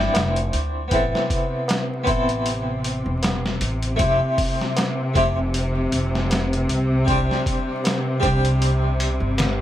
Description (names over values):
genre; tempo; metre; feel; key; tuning
trip hop; 78 BPM; 4/4; swing 56% on 16ths; A minor; A4 = 440 Hz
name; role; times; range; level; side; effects
harpsichord; accompaniment; 0.0-9.6 s; G3 to A4; -24 LUFS; equal; tremolo, vintage 12-bit sampler grit, low-pass filter, tape echo
upright bass; bass; 0.0-9.6 s; E1 to D2; -23 LUFS; equal; none
dusty soul sampler-style drum kit; drums; 0.0-9.6 s; hi-hat, kick drum, snare drum; -24 LUFS; equal; overdrive
tabla; percussion; 0.1-9.6 s; none; -32 LUFS; right 2 dB; none
rich studio string section; sustained chords; 0.9-9.6 s; C3; -25 LUFS; left 1 dB; none
room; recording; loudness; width
light reverb; vinyl crackle; -19 LUFS; side -12 dB against mid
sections
0.0-9.6 A section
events
none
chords
0.0 G7sus4; 0.9 Amadd9; 4.0 Fmaj7; 7.1 Csus2